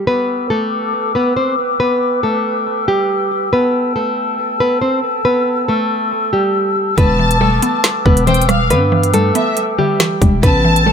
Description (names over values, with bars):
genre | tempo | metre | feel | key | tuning
hip hop, drill | 139 BPM | 4/4 | half-time | E minor | A4 = 440 Hz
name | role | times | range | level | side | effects
nylon-string guitar | melody | 0.0-10.9 s | G3 to C5 | -17 LUFS | equal | low-pass filter, analog delay
mellow hollow small flute group | sustained chords | 0.1-10.9 s | A4 to E6 | -19 LUFS | left 2 dB | none
warm symphonic violin section | second line | 7.0-10.9 s | E5 to A5 | -20 LUFS | left 2 dB | analog delay
mallet-like synth pluck | accompaniment | 7.0-10.9 s | C3 to B3 | -19 LUFS | equal | chorus, low-pass filter, analog delay
growling 808-style bass | bass | 7.0-10.9 s | E1 to G2 | -16 LUFS | equal | none
drill drum kit | drums | 7.0-10.9 s | hi-hat, kick drum, rim click, snare drum | -15 LUFS | equal | analog delay
room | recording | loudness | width
light reverb | echo-heavy mix | -13 LUFS | side -7 dB against mid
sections
0.1-10.9 A section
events
none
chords
0.1 Em7; 3.5 A7(no3); 7.0 Em7